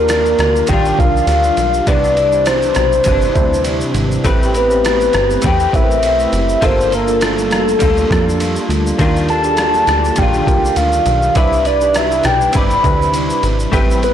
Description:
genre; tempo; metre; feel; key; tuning
indie pop, bedroom pop; 101 BPM; 4/4; swing 55% on 16ths; C major; A4 = 440 Hz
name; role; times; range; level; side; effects
soft octave-layered synth lead; melody; 0.0-14.1 s; A4 to B5; -15 LUFS; left 1 dB; wide subtle chorus
direct-recorded clean electric guitar; accompaniment; 0.0-14.1 s; C3 to D5; -22 LUFS; left 4 dB; ensemble chorus, warbly pitch drift
tine electric piano; accompaniment; 0.0-14.1 s; Bb3 to C5; -22 LUFS; right 4 dB; overdrive, fast stereo tremolo, cassette tape
hollow soft pad; sustained chords; 0.0-14.1 s; C3 to A5; -25 LUFS; right 1 dB; ensemble chorus
plucky analog bass; bass; 0.0-14.1 s; F1 to F2; -19 LUFS; equal; tube saturation
boom bap sampler-style drum kit; drums; 0.1-14.1 s; kick drum, ride cymbal, rim click, shaker; -19 LUFS; equal; overdrive
room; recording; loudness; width
light reverb; blown-out, overdriven recording, overdrive; -12 LUFS; side -10 dB against mid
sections
0.0-14.1 A section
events
none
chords
0.0 Ebmaj9; 1.9 Cmaj9; 4.2 Am9; 6.6 Gm9; 9.0 Ebmaj9; 11.4 Cmaj9

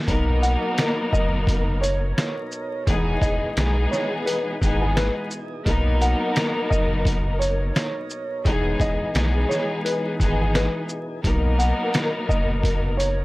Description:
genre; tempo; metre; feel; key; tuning
hip hop, boom-bap hip-hop; 86 BPM; 4/4; swing 59% on 16ths; B major; A4 = 439 Hz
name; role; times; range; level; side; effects
tonewheel organ; sustained chords; 0.0-13.2 s; B2 to A#4; -35 LUFS; equal; overdrive, slow rotary speaker, high-pass filter, low-pass filter
warm studio string section; accompaniment; 0.1-13.2 s; E3 to A#4; -25 LUFS; left 1 dB; cassette tape, high-pass filter, low-pass filter
warm sub bass; bass; 0.1-13.2 s; E1 to B1; -23 LUFS; equal; tube saturation
trip hop sampler-style drum kit; drums; 0.1-13.2 s; hi-hat, kick drum, shaker, snare drum; -24 LUFS; equal; none
dark upright piano; melody; 0.4-13.2 s; G#4 to F#5; -28 LUFS; equal; high-pass filter, low-pass filter, analog delay
room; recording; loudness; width
little or no reverb; dry, gritty hardware recording, vinyl crackle; -20 LUFS; side -20 dB against mid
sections
0.1-13.2 A section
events
none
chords
0.1 Bmaj7; 2.9 Emaj7; 5.7 Bmaj7; 8.5 Emaj7; 11.2 Bmaj7

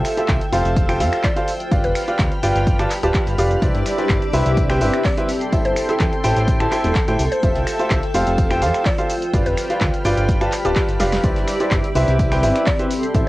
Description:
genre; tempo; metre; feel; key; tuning
piano house; 126 BPM; 4/4; straight; C major; A4 = 440 Hz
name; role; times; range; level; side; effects
analog string pad; sustained chords; 0.0-13.3 s; A4 to F6; -28 LUFS; equal; ensemble chorus, sidechain pumping
clear upright piano; riff; 0.0-13.3 s; E4 to A5; -21 LUFS; equal; sidechain pumping
fat analog bass; bass; 0.0-13.2 s; D1 to A2; -21 LUFS; equal; sidechain pumping
punchy analog drum machine; drums; 0.0-13.2 s; finger snaps, handclaps, hi-hat, shaker, snare drum; -28 LUFS; equal; cassette tape
soft brush drum kit; drums; 0.0-13.3 s; hi-hat, snare drum, tambourine; -41 LUFS; left 1 dB; none
granular cloud pad; texture; 0.0-13.3 s; C4 to A5; -27 LUFS; equal; built-in reverb, sidechain pumping
electronic kick drum; drums; 0.3-13.2 s; none; -20 LUFS; equal; overdrive, cassette tape
mallet-like synth pluck; melody; 1.2-12.8 s; G4 to D5; -26 LUFS; equal; chorus, cassette tape, tape echo
room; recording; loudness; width
light reverb; home recording on cassette; -16 LUFS; side -18 dB against mid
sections
0.0-13.3 A section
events
drum fill 11.0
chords
0.0 Fmaj9; 1.7 G7; 3.6 Cmaj9; 5.3 Am7; 7.4 Fmaj9; 9.3 G7; 11.2 Cmaj9

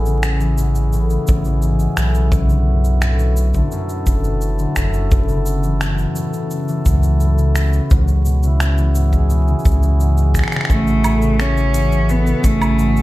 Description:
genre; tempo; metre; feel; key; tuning
folktronica; 86 BPM; 4/4; straight; A major; A4 = 442 Hz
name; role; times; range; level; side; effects
mellow accordion; sustained chords; 0.0-13.0 s; F#3 to A4; -28 LUFS; right 2 dB; none
concert harp; arpeggios; 0.0-13.0 s; F#2 to E3; -21 LUFS; left 2 dB; tape echo
warm sub bass; bass; 0.0-13.0 s; F#1 to C#2; -16 LUFS; equal; none
organic electronic drum kit; drums; 0.1-13.0 s; finger snaps, hi-hat, shaker, woodblock; -26 LUFS; right 1 dB; overdrive
kick drum; drums; 1.3-12.6 s; none; -18 LUFS; equal; none
clear cello; melody; 10.7-13.0 s; A3 to C#4; -18 LUFS; right 1 dB; none
room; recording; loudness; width
small room ambience; vinyl crackle; -14 LUFS; side -17 dB against mid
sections
0.0-13.0 A section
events
none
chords
0.0 Amaj7; 2.3 Bm7; 5.1 F#m7; 7.9 C#m7; 10.7 Amaj7

